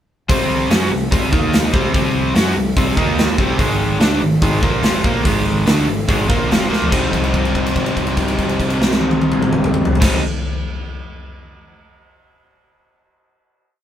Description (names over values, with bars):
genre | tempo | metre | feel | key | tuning
blues rock power trio and southern rock | 144 BPM | 4/4 | straight | C minor | A4 = 442 Hz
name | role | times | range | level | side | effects
overdriven electric guitar | riff | 0.3-10.2 s | F2 to F#4 | -17 LUFS | equal | none
growling fingered electric bass | bass | 0.3-10.2 s | F1 to F#2 | -25 LUFS | equal | overdrive
big rock drum kit | drums | 0.3-10.1 s | crash cymbal, hi-hat, kick drum, snare drum, toms | -17 LUFS | equal | none
room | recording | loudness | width
light reverb | band playing live in one room | -14 LUFS | side -10 dB against mid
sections
0.3-6.9 riff; 6.9-10.3 final chord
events
drum fill 6.7; held note 6.9-10.0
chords
0.3 C5; 1.3 Eb5; 1.7 C5; 3.0 Eb5; 3.4 C5; 3.6 Ab5; 6.9 Cm